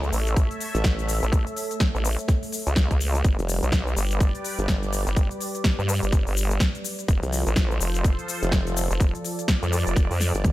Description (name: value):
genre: bass house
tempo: 125 BPM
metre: 4/4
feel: swing 60% on 16ths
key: unclear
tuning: A4 = 439 Hz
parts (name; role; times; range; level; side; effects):
- sweeping resonant pad; sustained chords; 0.0-10.5 s; F3 to E5; -32 LUFS; equal; chorus, sidechain pumping
- vowel-sweep wobble bass; bass; 0.0-10.3 s; F1 to G2; -24 LUFS; equal; chorus, overdrive, sidechain pumping
- big-room dance drum kit; drums; 0.0-10.5 s; hi-hat, shaker, snare drum, toms; -29 LUFS; left 1 dB; overdrive, studio reverb
- electronic kick drum; drums; 0.4-10.5 s; none; -21 LUFS; equal; studio reverb
- formant-sweep wobble bass; bass; 0.7-10.5 s; F1 to C2; -25 LUFS; equal; chorus, tube saturation, sidechain pumping
room: digital ambience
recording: none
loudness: -21 LUFS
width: side -16 dB against mid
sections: 0.0-10.5 A section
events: drum fill 10.2-10.5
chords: 0.0 A; 3.2 G; 7.1 F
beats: 0.36 0.84 | 1.32 1.80 2.29 2.77 | 3.25 3.73 4.21 4.68 | 5.17 5.64 6.12 6.61 | 7.08 7.57 8.04 8.53 | 9.01 9.48 9.96 10.45